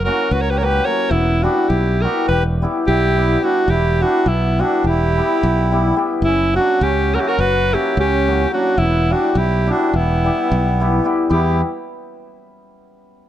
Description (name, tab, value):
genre	balkan folk, Balkan wedding band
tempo	212 BPM (eighths)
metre	9/8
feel	straight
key	E dorian sharp4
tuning	A4 = 440 Hz
part	clear alto saxophone	melody	0.0-11.6 s	E4 to C#5	-19 LUFS	equal	none
part	accordion	second line	0.0-11.6 s	B3 to A#4	-23 LUFS	right 5 dB	none
part	cimbalom	accompaniment	0.0-11.6 s	F#3 to G4	-21 LUFS	left 3 dB	none
part	modern bright fingered electric bass	bass	0.0-11.6 s	E1 to E2	-18 LUFS	equal	none
room	moderate spring reverb, RT60 1.9 s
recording	dark, warm production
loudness	-14 LUFS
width	side -12 dB against mid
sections	0.0-11.3 A section; 11.3-13.3 B section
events	none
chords	0.0 F#; 1.1 Em; 6.2 F#; 8.8 Em